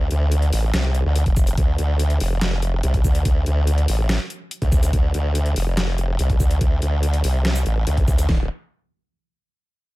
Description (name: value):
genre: heavy wobble dubstep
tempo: 143 BPM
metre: 4/4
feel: half-time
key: D minor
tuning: A4 = 440 Hz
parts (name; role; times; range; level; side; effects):
- formant-sweep wobble bass; bass; 0.0-8.5 s; D1 to D2; -19 LUFS; equal; chorus, overdrive
- dubstep drum kit; drums; 0.1-8.3 s; hi-hat, shaker, snare drum; -28 LUFS; equal; overdrive
- dubstep drum kit; drums; 1.3-8.4 s; kick drum, snare drum; -18 LUFS; equal; overdrive
room: little or no reverb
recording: none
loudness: -18 LUFS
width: side -19 dB against mid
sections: 0.0-8.3 A section; 8.3-10.0 B section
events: drop 0.0-8.3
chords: none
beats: 0.32 0.74 1.16 | 1.57 2.00 2.41 2.83 | 3.25 3.67 4.09 4.51 | 4.93 5.35 5.77 6.19 | 6.61 7.03 7.45 7.87 | 8.29